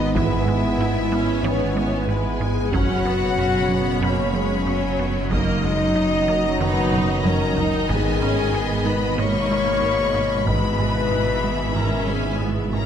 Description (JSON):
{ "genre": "cinematic, hybrid orchestral and electronic film score", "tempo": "93 BPM", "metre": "4/4", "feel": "straight", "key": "unclear", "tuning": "A4 = 440 Hz", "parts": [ { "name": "clear symphonic violin section", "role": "melody", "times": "0.0-12.9 s", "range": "B4 to C#6", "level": "-31 LUFS", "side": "left 4 dB", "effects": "none" }, { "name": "rich symphonic violin section", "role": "second line", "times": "0.0-12.9 s", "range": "B4 to B5", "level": "-31 LUFS", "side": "left 3 dB", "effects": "none" }, { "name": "clear symphonic viola section", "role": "accompaniment", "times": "0.0-12.9 s", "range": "E3 to D#4", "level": "-29 LUFS", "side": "right 2 dB", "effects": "none" }, { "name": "clear trombone section", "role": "sustained chords", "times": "0.0-12.9 s", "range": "B2 to B3", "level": "-29 LUFS", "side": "right 2 dB", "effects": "none" }, { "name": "mellow French horn section", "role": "sustained chords", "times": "0.0-12.9 s", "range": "B3 to C#5", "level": "-25 LUFS", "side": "left 4 dB", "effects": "none" }, { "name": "phased analog pad", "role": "sustained chords", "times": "0.0-12.9 s", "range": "B2 to D#5", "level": "-30 LUFS", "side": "equal", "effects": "phaser, chorus" }, { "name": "resonant blip pluck", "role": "arpeggios", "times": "0.0-12.9 s", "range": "A#2 to G#4", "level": "-33 LUFS", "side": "right 4 dB", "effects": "none" }, { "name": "rich symphonic cello section", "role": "bass", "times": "0.0-12.9 s", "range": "F#2 to G#2", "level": "-28 LUFS", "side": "right 2 dB", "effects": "none" }, { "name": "warm sub bass", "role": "bass", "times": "0.0-12.9 s", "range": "F#1 to G#1", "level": "-31 LUFS", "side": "equal", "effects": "none" }, { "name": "warm symphonic double bass section", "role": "bass", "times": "0.0-12.9 s", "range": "F#1 to G#1", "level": "-29 LUFS", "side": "right 3 dB", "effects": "none" }, { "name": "rubbery square bass", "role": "riff", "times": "0.1-12.9 s", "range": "F#2 to G#3", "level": "-28 LUFS", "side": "right 2 dB", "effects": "none" }, { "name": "taiko ensemble", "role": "drums", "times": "0.2-11.1 s", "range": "none", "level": "-28 LUFS", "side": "left 1 dB", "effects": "none" } ], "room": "moderate scoring stage reverb, RT60 1.7 s", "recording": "none", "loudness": "-18 LUFS", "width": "side -8 dB against mid", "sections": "0.0-12.9 A section", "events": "drum fill 6.9-7.9", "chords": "0.1 E/G#; 2.7 F#sus4; 5.3 D#m/F#; 7.9 G#m; 10.5 E/G#" }